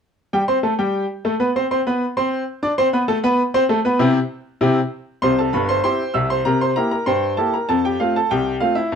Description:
ragtime piano; 98 BPM; 2/4; straight; C major; A4 = 441 Hz
bright upright piano; solo; 0.3-9.0 s; G1 to E6; -17 LUFS; equal
moderate studio reverb, RT60 0.7 s; dark, warm production; -17 LUFS; side -7 dB against mid
0.3-5.2 A section; 5.2-9.0 B section
0.3 C5; 5.2 C; 6.5 C7; 7.7 F

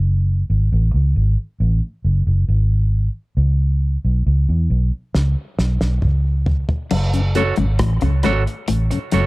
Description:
dub reggae; 68 BPM; 4/4; straight; F# minor; A4 = 440 Hz
vintage muted fingered electric bass; bass; 0.0-9.3 s; F#1 to E2; -16 LUFS; equal
cloth-damped thuddy drum kit; drums; 5.1-9.3 s; crash cymbal, hi-hat, kick drum, rim click, snare drum, toms; -24 LUFS; equal
semi-hollow electric guitar; riff; 6.9-9.3 s; F#2 to C#3; -22 LUFS; left 5 dB; dub echo
mellow tonewheel organ; accompaniment; 7.1-9.2 s; F#2 to C#4; -25 LUFS; left 4 dB; slow rotary speaker, dub echo
clean electric guitar; accompaniment; 7.4-9.3 s; F#4 to C#5; -23 LUFS; right 6 dB; dub echo
small room ambience; -16 LUFS; side -21 dB against mid
0.0-6.9 A section; 6.9-9.3 B section
break 0.0-6.9; drum fill 5.1-6.9
0.0 F#m; 3.4 N.C.; 6.9 F#m

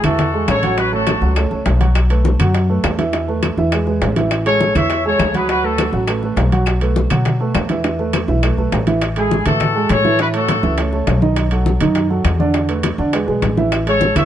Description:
latin, salsa; 204 BPM; 4/4; straight; A major; A4 = 440 Hz
warm trumpet section; melody; 0.0-1.3, 4.5-5.9, 9.2-10.8, 13.9-14.2 s; E4 to E5; -18 LUFS; left 2 dB
dark upright piano; accompaniment; 0.0-14.2 s; D3 to F#5; -19 LUFS; right 4 dB
upright bass; bass; 0.0-14.2 s; A1 to B2; -18 LUFS; equal
claves; percussion; 0.0-8.6, 13.7-14.2 s; -30 LUFS; left 6 dB
congas; percussion; 0.0-14.2 s; -23 LUFS; left 2 dB
timbales; percussion; 0.0-14.2 s; -27 LUFS; right 5 dB
bongos; percussion; 0.2-14.2 s; -26 LUFS; left 6 dB
light reverb; nothing above 10.9 kHz; -14 LUFS; side -11 dB against mid
0.0-9.0 A section; 9.0-14.2 A section
0.0 Amaj7; 0.8 F#m/A; 2.0 B5; 3.1 Esus4; 3.7 E; 4.3 Amaj7; 5.5 D6; 6.7 B5; 7.8 Esus4; 9.0 Amaj7; 10.2 F#m7; 11.4 B7; 12.5 E7sus4; 13.1 E; 13.7 Amaj7

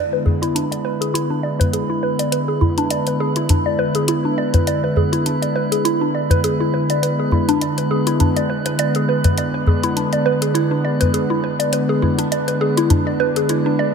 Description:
organic downtempo; 102 BPM; 4/4; swing 55% on 16ths; A4 = 442 Hz
warm analog pad; sustained chords; 0.0-13.9 s; D3 to E4; -21 LUFS; equal; chorus
mallet-like synth pluck; arpeggios; 0.0-13.9 s; D4 to D5; -20 LUFS; equal; chorus, phaser, tape echo
drifting glass-harmonics texture; texture; 0.3-13.9 s; B4; -27 LUFS; right 4 dB; chorus, built-in reverb
udu; percussion; 0.3-13.0 s; -18 LUFS; left 1 dB
electronic hi-hat; drums; 0.4-13.6 s; -25 LUFS; left 2 dB
moderate echo chamber reverb, RT60 2.2 s; -16 LUFS; side -6 dB against mid
0.0-13.9 A section
filter sweep on synth pluck 0.0-13.9
0.0 E7

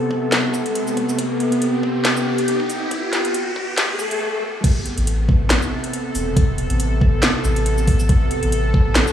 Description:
deep dubstep; 139 BPM; 4/4; swing 55% on 16ths, half-time; A minor; A4 = 437 Hz
bowed-like drone; sustained chords; 0.0-9.1 s; C3 to A4; -22 LUFS; equal; built-in reverb
riser and swell; sound effects; 0.0-4.6 s; -26 LUFS; left 1 dB
electronic kick drum; drums; 0.1-8.8 s; -17 LUFS; equal; high-pass filter on kick, studio ambience
garage drum kit; drums; 0.3-9.1 s; crash cymbal, handclaps, hi-hat, shaker, snare drum; -23 LUFS; equal; high-pass filter on hats, studio ambience, high-pass filter on snare, high-pass filter on perc, high-pass filter on cymbals
soft dub sub bass; bass; 5.0-9.1 s; E1 to A1; -19 LUFS; equal; tube saturation
light reverb, digital ambience; played on a big sound system in a bare room, large studio reverb, high-pass filter, small room ambience; -17 LUFS; side -10 dB against mid
0.0-4.6 A section; 4.6-9.1 B section
build-up 0.0-4.6; riser 0.0-4.2; filter sweep on synth drone 0.0-4.6; filter sweep 0.0-4.6; swell 3.8-4.6; stop 4.2-4.6; drop 4.6-9.1
0.0 Amadd9

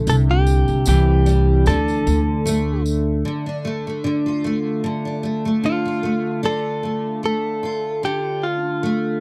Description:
acoustic pop; 75 BPM; 4/4; swing 55% on 16ths; D minor; A4 = 440 Hz
picked steel-string acoustic guitar; accompaniment; 0.0-9.2 s; C3 to F4; -24 LUFS; equal; double-tracked
upright bass; bass; 0.0-3.2 s; C2 to D2; -19 LUFS; equal
direct-recorded clean electric guitar; melody; 0.1-9.2 s; F4 to A4; -25 LUFS; equal; vibrato effect
tambourine; percussion; 0.1-3.1 s; -36 LUFS; equal
little or no reverb; dry, close 1970s-style studio recording; -20 LUFS; mono
0.0-3.3 A section; 3.3-6.4 B section; 6.4-9.2 C section
0.1 C; 1.7 D5; 3.3 Dm

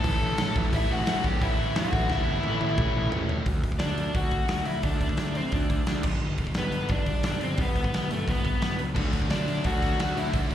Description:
punk rock; 175 BPM; 4/4; straight; A4 = 440 Hz
smooth overdriven lead guitar; melody; 0.0-10.3 s; A3 to A5; -30 LUFS; left 1 dB; slapback echo, tape echo
distorted electric guitar; riff; 0.0-3.5, 8.9-10.5 s; A2 to A4; -35 LUFS; right 11 dB; overdrive, slapback echo
overdriven electric guitar; riff; 0.0-3.5, 8.9-10.5 s; A2 to D4; -33 LUFS; left 10 dB; slapback echo
fuzz picked electric bass; bass; 0.0-10.5 s; G1 to E2; -30 LUFS; equal; overdrive
big rock drum kit; drums; 0.0-10.5 s; crash cymbal, hi-hat, kick drum, snare drum, toms; -27 LUFS; equal
little or no reverb; live gig heard through the venue's PA, recital hall reverb, faint mains hum; -24 LUFS; side -11 dB against mid
0.0-3.5 A section; 3.5-10.5 B section
drum fill 2.1-3.5
0.0 A; 3.5 D; 6.0 G; 9.0 D

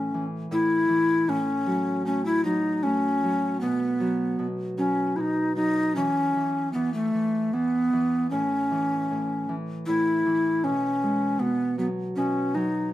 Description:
children's music, lullaby; 78 BPM; 3/4; rubato; A4 = 440 Hz
breathy mellow bass recorder; melody; 0.0-12.9 s; A3 to E4; -23 LUFS; equal
Celtic harp; accompaniment; 0.0-12.9 s; A2 to A3; -30 LUFS; equal
light reverb; band playing live in one room; -23 LUFS; side -14 dB against mid
0.0-12.9 A section
0.0 A5; 1.3 F#m/A; 3.6 B5; 6.0 N.C.; 8.3 A; 10.6 G#madd11/B; 11.4 B5

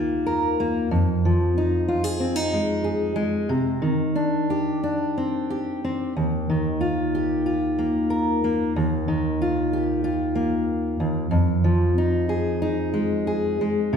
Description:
folk, solo fingerstyle acoustic guitar; 93 BPM; 4/4; rubato; A4 = 442 Hz
fingerpicked steel-string acoustic guitar; solo; 0.0-14.0 s; Eb2 to Bb4; -21 LUFS; equal
wet recital hall reverb, RT60 1.5 s; recorded in a church or concert hall; -21 LUFS; side -7 dB against mid
0.0-14.0 A section
0.0 Ebadd9; 0.9 Fm7; 3.5 Cmadd9; 6.2 Ebadd9; 11.3 Fm7

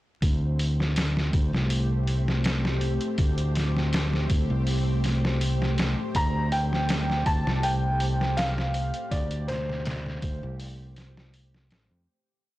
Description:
trip hop; 81 BPM; 4/4; straight; A4 = 440 Hz
string machine, cellos; sustained chords; 0.2-12.1 s; A3 to C5; -34 LUFS; left 1 dB; ensemble chorus
fingered electric bass; bass; 0.2-12.1 s; A1 to F2; -26 LUFS; equal; tube saturation
trip hop sampler-style drum kit; drums; 0.2-11.9 s; hi-hat, kick drum, snare drum; -29 LUFS; equal; studio reverb
bowed-like drone; texture; 1.3-12.1 s; G4; -40 LUFS; left 1 dB; built-in reverb, phaser
felt-muted upright piano; melody; 6.2-10.6 s; C5 to Bb5; -29 LUFS; equal; vintage 12-bit sampler grit, tape echo
little or no reverb; blown-out, overdriven recording, vinyl crackle, overdrive; -23 LUFS; side -17 dB against mid
0.2-12.1 groove
fade-out 8.1-12.1
0.2 D5; 6.2 N.C.

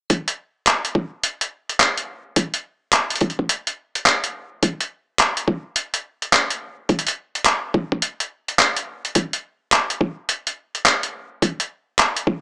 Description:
glitch hop; 106 BPM; 4/4; swing 63% on 16ths
boom bap sampler-style drum kit; drums; 0.1-12.2 s; handclaps, hi-hat; -17 LUFS; equal; overdrive
electronic kick drum; drums; 0.1-12.4 s; -20 LUFS; equal; overdrive, high-pass filter on kick, high-pass filter on room
moderate digital room reverb, RT60 1.2 s; small speaker sound; -19 LUFS; side -24 dB against mid
0.1-12.4 A section

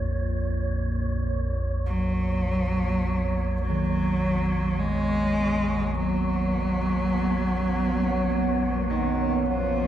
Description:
dark ambient drone; free time; A4 = 440 Hz
deep dark ambient pad; sustained chords; 0.0-9.9 s; Bb3 to F#5; -30 LUFS; right 3 dB; chorus, built-in reverb
deep rumbling drone; drone; 0.0-9.9 s; Bb1 to F2; -28 LUFS; equal; built-in reverb, lush chorus
wind-like tuned noise texture; texture; 0.0-9.9 s; Db5; -34 LUFS; right 2 dB; built-in reverb
rich cello; melody; 1.9-9.9 s; D#3 to Ab3; -26 LUFS; equal; analog delay
gamelan-type bronze metallophone; arpeggios; 3.7-9.9 s; D#3; -35 LUFS; right 1 dB; analog delay
moderate spring reverb, RT60 2.3 s; echo-heavy mix; -23 LUFS; side -11 dB against mid
0.0-9.9 A section
0.1 Badd9/Bb

